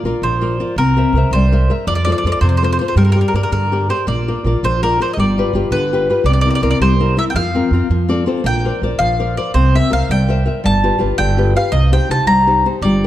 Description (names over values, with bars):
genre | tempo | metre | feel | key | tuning
italian folk, Italian serenade | 109 BPM (dotted quarters) | 6/8 | straight | unclear | A4 = 440 Hz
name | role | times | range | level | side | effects
nylon-string guitar | accompaniment | 0.0-13.1 s | C3 to E5 | -18 LUFS | left 2 dB | none
upright bass | bass | 0.0-13.1 s | G1 to G2 | -16 LUFS | right 1 dB | none
mandolin | melody | 0.2-13.1 s | Bb4 to Bb5 | -19 LUFS | equal | none
room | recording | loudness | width
light reverb | dark, warm production, faint mains hum | -13 LUFS | side -13 dB against mid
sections
0.0-13.1 A section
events
nylon-string guitar fill 7.9-8.5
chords
0.0 Bb; 0.8 C7; 1.9 F; 3.0 Gm; 4.1 Bb; 5.2 G7; 6.3 C7; 7.4 Fsus4; 7.9 F; 8.5 Bbadd9; 9.6 C7; 10.6 G7; 11.7 Cm